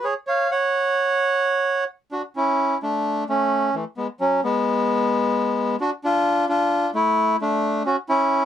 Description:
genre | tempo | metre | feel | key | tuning
tango | 130 BPM | 4/4 | rubato | A major | A4 = 437 Hz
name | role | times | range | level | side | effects
bandoneon | solo | 0.0-8.4 s | E3 to F#5 | -19 LUFS | equal | none
room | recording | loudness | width
light reverb | dry, close 1970s-style studio recording | -19 LUFS | side -10 dB against mid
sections
0.0-2.3 A section; 2.3-8.4 B section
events
none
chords
0.0 C#; 0.5 F#5; 2.3 A; 4.2 B5; 6.0 Dm; 7.8 N.C.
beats
0.02 | 0.48 0.94 1.40 1.86 | 2.33 2.79 3.25 3.72 | 4.18 4.64 5.09 5.55 | 6.01 6.47 6.92 7.38 | 7.84 8.30

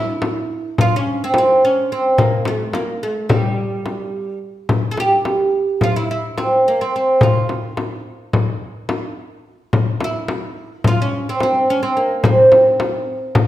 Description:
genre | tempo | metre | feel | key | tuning
Turkish makam ensemble | 215 BPM (eighths) | 9/8 | straight | C makam hicaz | A4 = 440 Hz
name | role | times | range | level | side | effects
oud | melody | 0.0-13.5 s | G3 to A4-40c | -16 LUFS | right 1 dB | none
frame drum | percussion | 0.2-13.5 s | none | -19 LUFS | left 2 dB | none
room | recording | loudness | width
wet recital hall reverb, RT60 1.3 s | none | -15 LUFS | side -13 dB against mid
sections
0.0-13.5 A section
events
none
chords
none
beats
0.22 0.50 0.78 1.06 1.34 1.62 1.90 | 2.18 2.46 2.74 3.02 3.30 3.58 3.86 4.14 4.42 | 4.70 4.97 5.25 5.53 5.81 6.09 6.37 6.65 6.93 | 7.21 7.49 7.77 8.05 8.33 8.61 8.89 9.17 9.45 | 9.73 10.01 10.29 10.56 10.84 11.12 11.40 11.68 11.96 | 12.24 12.52 12.80 13.08 13.36

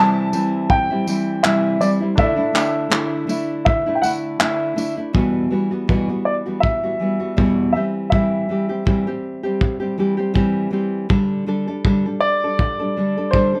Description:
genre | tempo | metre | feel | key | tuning
acoustic pop | 81 BPM | 4/4 | swing 55% on 16ths | unclear | A4 = 440 Hz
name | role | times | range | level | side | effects
dark upright piano | melody | 0.0-13.6 s | C5 to A5 | -23 LUFS | equal | plate reverb
nylon-string guitar | accompaniment | 0.0-13.6 s | E2 to A4 | -22 LUFS | equal | none
warm concert grand piano | accompaniment | 0.0-5.2 s | C4 to E5 | -32 LUFS | equal | none
cloth-damped thuddy drum kit | drums | 0.3-13.5 s | handclaps, kick drum, tambourine | -23 LUFS | equal | none
room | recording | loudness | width
moderate small room reverb, RT60 0.6 s | none | -19 LUFS | mono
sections
0.0-5.1 A section; 5.1-13.6 B section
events
none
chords
0.0 C; 2.2 Dsus2; 5.1 Emadd9; 7.8 C/E; 11.1 Dsus4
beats
0.69 1.44 | 2.18 2.92 3.66 4.41 | 5.15 5.89 6.63 7.38 | 8.12 8.87 9.61 10.35 | 11.10 11.84 12.59 13.33

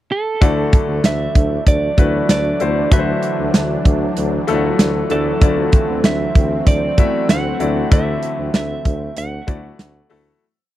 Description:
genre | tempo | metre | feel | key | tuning
1980s-style pop | 96 BPM | 4/4 | straight | unclear | A4 = 441 Hz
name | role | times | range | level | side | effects
lightly driven lead guitar | melody | 0.1-10.1 s | A4 to F#5 | -22 LUFS | right 3 dB | tape echo
clear baby grand piano | accompaniment | 0.4-10.4 s | D3 to E5 | -23 LUFS | left 6 dB | none
lush unison pad | sustained chords | 0.4-10.4 s | E3 to D4 | -25 LUFS | equal | chorus
warm tuba | bass | 0.4-10.3 s | D2 | -22 LUFS | equal | none
modern studio drum kit | drums | 0.4-10.2 s | hi-hat, kick drum, snare drum | -13 LUFS | equal | none
room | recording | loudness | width
little or no reverb | dry, close 1970s-style studio recording | -14 LUFS | side -14 dB against mid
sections
0.0-0.4 pickup bar; 0.4-10.4 pre-chorus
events
fade-out 7.9-10.4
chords
0.4 Dadd9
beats
| 0.42 1.04 1.67 2.29 | 2.92 3.54 4.17 4.79 | 5.42 6.04 6.67 7.29 | 7.92 8.54 9.17 9.79

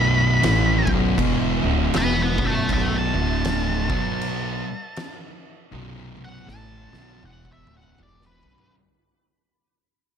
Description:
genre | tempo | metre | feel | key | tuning
stoner and doom metal | 79 BPM | 4/4 | swing 59% on 8ths | B minor | A4 = 439 Hz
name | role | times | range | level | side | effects
octave-fuzz lead guitar | melody | 0.0-8.7 s | B4 to B5 | -26 LUFS | equal | wah, distortion, analog delay
thick fuzz guitar | riff | 0.0-8.7 s | B1 to B3 | -26 LUFS | left 9 dB | distortion
thick fuzz guitar | riff | 0.0-8.7 s | B1 to B3 | -25 LUFS | right 8 dB | distortion
upright bass | bass | 0.0-8.7 s | D1 to B1 | -26 LUFS | equal | overdrive
oversized low-tuned drum kit | drums | 0.4-8.7 s | crash cymbal, kick drum, snare drum, toms | -28 LUFS | right 1 dB | none
room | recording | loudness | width
little or no reverb | none | -19 LUFS | side -8 dB against mid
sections
0.0-8.7 A section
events
fade-out 0.0-8.7; lead electric guitar solo 0.0-8.7; drum fill 5.7-8.7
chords
0.0 Bm; 3.1 D5; 3.8 Bm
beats
0.43 1.19 1.94 | 2.69 3.45 4.21 4.96 | 5.72 6.47 7.23 7.99

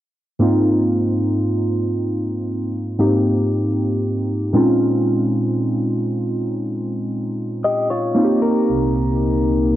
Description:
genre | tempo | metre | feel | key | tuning
R&B | 58 BPM | 4/4 | straight | Ab major | A4 = 440 Hz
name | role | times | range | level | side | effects
warm analog keys | accompaniment | 0.4-9.8 s | Ab2 to G4 | -17 LUFS | equal | chorus, cassette tape
direct-recorded clean electric guitar | arpeggios | 7.6-9.8 s | F4 to Eb5 | -22 LUFS | left 3 dB | wide subtle chorus, cassette tape, analog delay
chorused pulse-width pad | sustained chords | 8.7-9.8 s | C2 to Eb4 | -18 LUFS | left 1 dB | cassette tape
room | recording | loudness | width
light reverb, digital ambience | home recording on cassette, low-pass filter | -17 LUFS | side -13 dB against mid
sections
0.4-9.8 A section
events
filter sweep 0.4-9.8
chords
0.4 Ab6; 4.5 Bbm11; 8.2 Cm7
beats
| 0.40 1.44 2.47 3.51 | 4.54 5.58 6.61 7.64 | 8.68 9.71

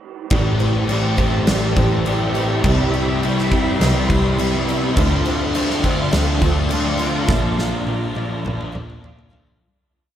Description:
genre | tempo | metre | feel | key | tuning
rock, shoegaze and dream pop | 103 BPM | 4/4 | straight | unclear | A4 = 438 Hz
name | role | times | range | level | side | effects
phased string machine | sustained chords | 0.3-9.6 s | F4 to C6 | -28 LUFS | right 1 dB | ensemble chorus, phaser
picked twelve-string acoustic guitar | arpeggios | 0.3-10.1 s | F3 to F4 | -28 LUFS | equal | ensemble chorus, diffuse ambient delay
electric guitar through a small old amp | riff | 0.3-9.6 s | A2 to G4 | -25 LUFS | right 8 dB | reverse reverb
thick fuzz guitar | riff | 0.3-9.6 s | A2 to D4 | -21 LUFS | left 4 dB | distortion, ensemble chorus
bright double bass | bass | 0.3-9.5 s | A1 to D2 | -23 LUFS | equal | none
huge arena drum kit | drums | 0.3-9.6 s | crash cymbal, kick drum, snare drum, toms | -22 LUFS | equal | none
room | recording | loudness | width
moderate huge ambient reverb, RT60 7.7 s | dreamy mix soaked in reverb | -16 LUFS | side -10 dB against mid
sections
0.3-9.6 verse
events
fade-out 7.3-9.6; drum fill 7.3-9.6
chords
0.3 Am7; 2.6 Cmaj7; 5.0 Dm7; 7.3 Bbmaj7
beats
| 0.32 0.90 1.48 2.06 | 2.65 3.23 3.81 4.39 | 4.97 5.55 6.14 6.72 | 7.30 7.88 8.45 9.03

